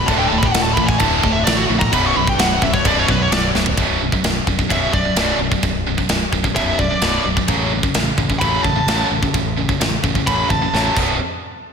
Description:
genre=heavy metal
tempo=130 BPM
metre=4/4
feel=straight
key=B minor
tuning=A4 = 443 Hz
part: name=high-gain lead guitar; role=melody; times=0.0-10.9 s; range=F#4 to C#6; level=-21 LUFS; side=equal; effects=distortion, slapback echo, tape echo
part: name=pipe organ, strings celeste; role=sustained chords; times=0.0-3.8 s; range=D3 to D5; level=-30 LUFS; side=left 1 dB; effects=none
part: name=heavy high-gain guitar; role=riff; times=0.0-11.2 s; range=B1 to F#3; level=-22 LUFS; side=right 9 dB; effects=distortion, slapback echo
part: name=heavy high-gain guitar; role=riff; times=0.0-3.8 s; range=B1 to D3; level=-25 LUFS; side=equal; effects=distortion, slapback echo
part: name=tight distorted guitar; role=riff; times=0.0-11.2 s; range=B1 to F#3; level=-23 LUFS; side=left 10 dB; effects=distortion, slapback echo
part: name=growling fingered electric bass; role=bass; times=0.0-11.2 s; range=B0 to B1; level=-24 LUFS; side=equal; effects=overdrive
part: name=tight metal drum kit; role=drums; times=0.1-11.1 s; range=crash cymbal, kick drum, ride cymbal, snare drum, toms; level=-20 LUFS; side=equal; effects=none
room=moderate scoring stage reverb, RT60 1.6 s, small room ambience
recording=big arena sound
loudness=-15 LUFS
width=side -6 dB against mid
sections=0.0-3.8 A section; 3.8-11.2 B section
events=lead electric guitar solo 0.0-3.8, 3.8-11.2; drum fill 3.5, 10.7-11.2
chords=0.1 D; 1.9 Bm; 7.5 F#m/A; 11.0 B5; 11.2 N.C.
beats=| 0.08 0.54 1.00 1.46 | 1.93 2.39 2.85 3.31 | 3.78 4.24 4.70 5.17 | 5.63 6.10 6.56 7.02 | 7.49 7.95 8.41 8.88 | 9.34 9.80 10.27 10.73

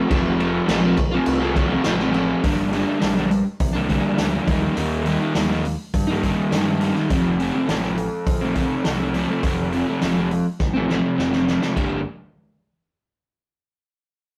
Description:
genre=garage rock duo or trio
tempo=103 BPM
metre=4/4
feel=straight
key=G minor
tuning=A4 = 441 Hz
part: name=crunchy overdriven guitar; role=riff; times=0.0-12.0 s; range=F2 to G4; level=-23 LUFS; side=equal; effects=none
part: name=growling picked electric bass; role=bass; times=0.1-12.0 s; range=F1 to G2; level=-30 LUFS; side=equal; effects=overdrive
part: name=vintage drum kit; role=drums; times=0.1-11.9 s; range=crash cymbal, hi-hat, kick drum, snare drum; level=-26 LUFS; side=equal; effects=none
room=moderate studio reverb, RT60 0.6 s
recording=rough rehearsal-room recording, warm saturation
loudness=-21 LUFS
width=mono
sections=0.0-2.4 A section; 2.4-11.8 B section; 11.8-14.1 C section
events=drum fill 10.6-11.8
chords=0.0 F; 2.4 Gm; 4.5 Eb; 7.1 F; 11.8 G5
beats=| 0.10 0.68 1.26 1.84 | 2.43 3.01 3.59 4.17 | 4.76 5.34 5.93 6.51 | 7.09 7.68 8.26 8.85 | 9.43 10.01 10.60 11.18 | 11.76

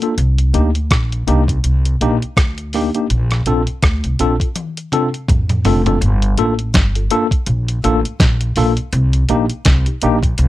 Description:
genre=lovers rock reggae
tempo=82 BPM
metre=4/4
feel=swing 58% on 16ths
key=unclear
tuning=A4 = 441 Hz
part: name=tine electric piano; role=accompaniment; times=0.0-10.2 s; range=Bb3 to A4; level=-17 LUFS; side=left 2 dB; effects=overdrive, fast stereo tremolo
part: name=clean 12-bit digital drum machine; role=drums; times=0.0-10.5 s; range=hi-hat, kick drum, rim click, snare drum, toms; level=-16 LUFS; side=equal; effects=none
part: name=upright bass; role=bass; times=0.2-10.5 s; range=F1 to F2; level=-16 LUFS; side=equal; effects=none
room=little or no reverb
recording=none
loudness=-13 LUFS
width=side -15 dB against mid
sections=0.0-6.0 A section; 6.0-10.5 B section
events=drum fill 4.6-6.0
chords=0.2 Cm9; 3.1 Bbmaj7; 6.0 Gm7; 8.9 Cm7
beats=| 0.17 0.91 1.64 2.37 | 3.10 3.83 4.55 5.28 | 6.01 6.74 7.47 8.20 | 8.93 9.65 10.38

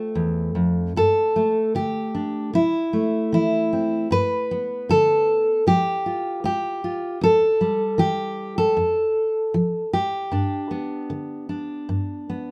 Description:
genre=folk, solo fingerstyle acoustic guitar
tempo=77 BPM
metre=4/4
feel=rubato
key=G mixolydian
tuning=A4 = 440 Hz
part: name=fingerpicked steel-string acoustic guitar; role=solo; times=0.0-12.5 s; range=E2 to B4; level=-22 LUFS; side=equal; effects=none
room=light reverb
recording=none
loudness=-22 LUFS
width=mono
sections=0.0-12.5 A section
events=none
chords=0.0 F; 1.0 Gsus2; 2.5 C6; 4.1 G; 5.7 Fsus2; 7.2 Emadd11; 8.8 N.C.; 10.3 G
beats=0.16 | 0.96 1.76 2.55 3.33 | 4.12 4.90 5.67 6.45 | 7.22 7.99 8.77 9.54 | 10.31 11.10 11.88

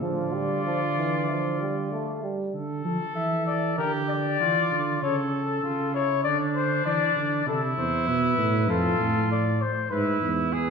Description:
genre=classical, imitative canzona for brass ensemble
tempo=98 BPM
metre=4/4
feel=straight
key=D minor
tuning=A4 = 438 Hz
part: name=mellow cornet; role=melody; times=0.0-10.7 s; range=A4 to E5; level=-27 LUFS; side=left 7 dB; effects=none
part: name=clear trumpet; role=second line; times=0.0-10.7 s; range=D4 to A4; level=-30 LUFS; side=right 3 dB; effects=none
part: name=warm trombone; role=accompaniment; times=0.0-2.5 s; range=E3 to A3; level=-30 LUFS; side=right 2 dB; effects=none
part: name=mellow tuba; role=bass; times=0.0-10.7 s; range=E2 to F3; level=-27 LUFS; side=right 3 dB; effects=none
room=wet recital hall reverb, RT60 1.6 s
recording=recorded in a church or concert hall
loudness=-23 LUFS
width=side -6 dB against mid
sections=0.0-2.5 A section; 2.5-10.7 B section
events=none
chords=0.0 Dm; 2.5 D5; 3.8 Bb/D (rootless); 5.0 A/C#; 6.2 Cadd9/D; 7.5 Am; 8.7 F; 9.9 E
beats=| 0.02 0.65 1.28 1.91 | 2.54 3.16 3.79 4.40 | 5.02 5.63 6.25 6.86 | 7.47 8.08 8.70 9.30 | 9.91 10.52

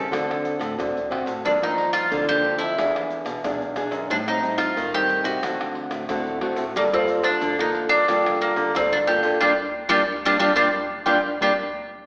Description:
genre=samba and choro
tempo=90 BPM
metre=4/4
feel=straight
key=G minor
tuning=A4 = 440 Hz
part: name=bowl-back mandolin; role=melody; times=0.0-11.5 s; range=Bb3 to A4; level=-21 LUFS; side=equal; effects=none
part: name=nylon-string guitar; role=accompaniment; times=0.0-11.5 s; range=G2 to A4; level=-27 LUFS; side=equal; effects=none
part: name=nylon-string guitar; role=bass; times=0.0-11.5 s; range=E2 to Eb3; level=-25 LUFS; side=equal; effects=none
part: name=egg shaker, surdo, pandeiro and tamborim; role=percussion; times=0.1-11.6 s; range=none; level=-33 LUFS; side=equal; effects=none
room=wet scoring stage reverb, RT60 1.5 s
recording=recorded in a church or concert hall, AM radio sound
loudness=-19 LUFS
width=side -33 dB against mid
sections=0.0-12.1 A section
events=band accent 9.4-12.1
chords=0.1 D7; 1.4 Gm7; 2.8 E7; 4.1 Am7b5; 5.4 D7; 6.8 Gm9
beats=0.12 0.78 | 1.45 2.11 2.78 3.44 | 4.11 4.77 5.43 6.10 | 6.76 7.43 8.09 8.75 | 9.42 10.08 10.75 11.41

